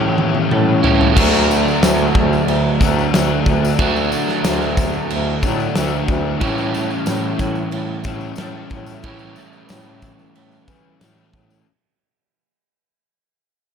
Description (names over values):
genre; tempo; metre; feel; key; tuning
rock, shoegaze and dream pop; 92 BPM; 4/4; straight; D major; A4 = 440 Hz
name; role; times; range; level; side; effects
twelve-string electric guitar; arpeggios; 0.0-1.2, 6.4-11.7 s; E3 to G4; -30 LUFS; right 7 dB; ensemble chorus, slapback echo
overdriven electric guitar; riff; 0.0-11.7 s; A2 to E4; -21 LUFS; left 11 dB; lush chorus
overdriven electric guitar; riff; 0.0-11.7 s; A2 to F#4; -20 LUFS; right 9 dB; reverse reverb
clear bass clarinet; bass; 0.0-11.6 s; D2 to E3; -22 LUFS; equal; none
big rock drum kit; drums; 0.2-11.5 s; crash cymbal, kick drum, snare drum, toms; -20 LUFS; equal; none
tambourine; percussion; 1.2-11.7 s; none; -35 LUFS; left 8 dB; none
room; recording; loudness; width
little or no reverb; none; -15 LUFS; side -7 dB against mid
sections
0.0-1.2 A section; 1.2-11.7 B section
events
drum fill 0.0-1.2; fade-out 1.2-11.7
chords
0.0 A5; 1.2 D; 6.4 A5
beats
0.51 | 1.17 1.82 2.48 3.14 | 3.79 4.45 5.10 5.76 | 6.42 7.07 7.73 8.38 | 9.04 9.70 10.35 11.01